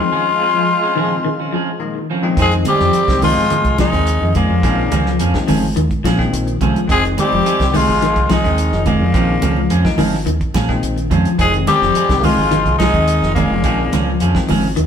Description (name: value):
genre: afrobeat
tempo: 106 BPM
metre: 4/4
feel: straight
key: F minor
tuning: A4 = 444 Hz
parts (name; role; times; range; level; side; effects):
- growling tenor saxophone; melody; 0.0-14.4 s; Bb3 to Ab4; -18 LUFS; left 4 dB; none
- brilliant trombone section; second line; 0.0-14.4 s; Bb2 to Ab3; -26 LUFS; right 1 dB; none
- growling trombone; second line; 0.0-14.4 s; Db3 to C4; -25 LUFS; right 2 dB; none
- bell-like tine electric piano; accompaniment; 0.0-14.7 s; Bb2 to Eb4; -25 LUFS; left 5 dB; none
- semi-hollow electric guitar; arpeggios; 0.0-14.9 s; Eb3 to F3; -22 LUFS; left 3 dB; tremolo
- semi-hollow electric guitar; stabs; 0.1-14.7 s; F3 to Ab4; -23 LUFS; right 3 dB; none
- deep dub fingered electric bass; bass; 2.4-14.9 s; F1 to Bb2; -19 LUFS; equal; none
- warm soul drum kit; drums; 2.4-14.9 s; hi-hat, kick drum, snare drum; -22 LUFS; right 1 dB; none
- congas; percussion; 2.7-14.6 s; none; -22 LUFS; right 3 dB; none
room: wet stone room reverb, RT60 1.1 s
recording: band playing live in one room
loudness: -13 LUFS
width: side -8 dB against mid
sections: 0.0-2.4 A section; 2.4-14.9 B section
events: none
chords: 0.1 Bbm9; 2.4 Fm7; 4.6 Bbm9; 6.9 Fm7; 9.1 Bbm9; 11.4 Fm7; 13.6 Bbm9